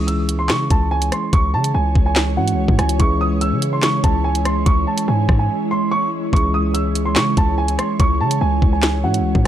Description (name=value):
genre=hip hop, drill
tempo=144 BPM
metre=4/4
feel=half-time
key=C# minor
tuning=A4 = 441 Hz
part: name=dark concert grand piano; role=melody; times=0.0-9.5 s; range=F#5 to E6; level=-22 LUFS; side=right 2 dB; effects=none
part: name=tine electric piano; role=accompaniment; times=0.0-9.5 s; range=E3 to G#4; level=-25 LUFS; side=left 2 dB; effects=medium stereo tremolo
part: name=ethereal airy pad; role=sustained chords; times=0.7-9.5 s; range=G#3 to C#5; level=-25 LUFS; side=right 2 dB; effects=ensemble chorus, built-in reverb
part: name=hard-hitting 808-style bass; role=bass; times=0.0-9.5 s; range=C#2 to C#3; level=-20 LUFS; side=equal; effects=none
part: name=drill drum kit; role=drums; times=0.1-9.5 s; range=handclaps, hi-hat, kick drum, rim click, snare drum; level=-18 LUFS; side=equal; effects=none
room=digital ambience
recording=none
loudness=-15 LUFS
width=side -11 dB against mid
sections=0.0-9.5 A section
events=break 5.5-6.3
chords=0.0 C#m